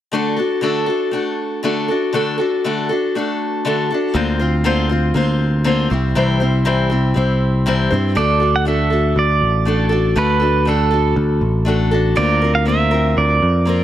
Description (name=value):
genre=folk rock and heartland rock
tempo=120 BPM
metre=4/4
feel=straight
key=D mixolydian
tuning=A4 = 440 Hz
part: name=picked acoustic archtop guitar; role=accompaniment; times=0.1-13.8 s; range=C3 to C5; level=-18 LUFS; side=left 2 dB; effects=none
part: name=picked electric bass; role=bass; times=4.1-13.8 s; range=A1 to G2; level=-17 LUFS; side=equal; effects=none
part: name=pedal steel guitar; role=melody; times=8.2-13.8 s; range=A4 to F#5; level=-18 LUFS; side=right 5 dB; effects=none
room=light reverb, small room ambience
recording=none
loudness=-14 LUFS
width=side -12 dB against mid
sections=0.1-8.2 A section; 8.2-13.8 B section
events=none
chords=0.1 D; 4.2 Bbadd9/D; 5.9 C; 8.2 D; 12.2 Bbadd9/D